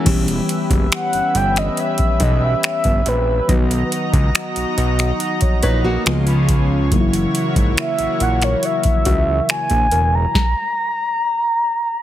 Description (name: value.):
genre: contemporary R&B.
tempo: 70 BPM.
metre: 4/4.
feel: straight.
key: unclear.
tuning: A4 = 440 Hz.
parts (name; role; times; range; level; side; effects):
mellow FM electric piano; accompaniment; 0.0-10.4 s; C#3 to B5; -22 LUFS; left 1 dB; chorus.
lush unison pad; sustained chords; 0.0-10.3 s; A#3 to A#5; -26 LUFS; equal; chorus, sidechain pumping.
nylon-string guitar; arpeggios; 0.0-0.3, 5.6-6.9 s; E3 to B4; -26 LUFS; equal; digital delay.
fat analog bass; bass; 0.1-10.3 s; E1 to C#2; -19 LUFS; equal; none.
booming analog drum machine; drums; 0.1-10.5 s; crash cymbal, finger snaps, hi-hat, kick drum, snare drum; -18 LUFS; equal; none.
soft round pluck; texture; 0.1-12.0 s; F#4 to D#5; -32 LUFS; left 1 dB; chorus, digital delay.
mellow horn-like synth lead; melody; 0.9-12.0 s; B4 to A#5; -19 LUFS; equal; chorus, digital delay.
room: little or no reverb.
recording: heavily compressed radio sound, multiband compression.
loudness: -15 LUFS.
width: side -12 dB against mid.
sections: 0.1-12.0 A section.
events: FM electric piano fill 5.2-6.9; stop 10.3-12.0.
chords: 0.1 Em6; 3.5 Bmaj7; 6.1 C#7; 6.9 F#7.